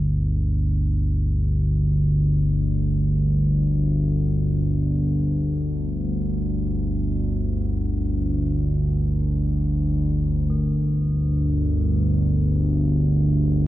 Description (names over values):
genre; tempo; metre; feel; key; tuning
dark ambient drone; free time; none; none; G minor; A4 = 439 Hz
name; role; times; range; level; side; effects
analog drone; drone; 0.0-13.7 s; G1 to D2; -20 LUFS; equal; chorus
bronze singing bowl; texture; 10.5-13.7 s; Bb4; -48 LUFS; left 1 dB; stereo widening
room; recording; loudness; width
wet cathedral reverb, RT60 5.8 s; worn, warbling old tape, cassette tape, warbly pitch drift; -20 LUFS; side -15 dB against mid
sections
0.0-10.5 A section; 10.5-13.7 A section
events
filter sweep on synth drone 0.0-10.5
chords
0.0 G5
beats
free time